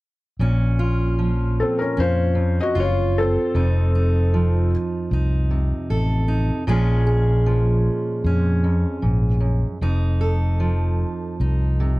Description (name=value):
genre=folk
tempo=76 BPM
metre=4/4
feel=straight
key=Bb minor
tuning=A4 = 440 Hz
part: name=fingerpicked steel-string acoustic guitar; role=accompaniment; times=0.4-12.0 s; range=F2 to A4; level=-24 LUFS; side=right 2 dB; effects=none
part: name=fretless electric bass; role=bass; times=0.4-12.0 s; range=F1 to F2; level=-19 LUFS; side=equal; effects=none
part: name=felt-muted upright piano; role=melody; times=1.6-4.7 s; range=C4 to Eb5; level=-22 LUFS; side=left 2 dB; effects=none
room=little or no reverb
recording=dark, warm production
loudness=-18 LUFS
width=side -20 dB against mid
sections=0.4-12.0 A section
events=none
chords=0.4 Bbmadd9; 3.5 F7; 6.7 Bbm7; 9.8 F7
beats=| 0.40 1.19 1.98 2.77 | 3.55 4.33 5.11 5.89 | 6.67 7.46 8.24 9.02 | 9.81 10.61 11.40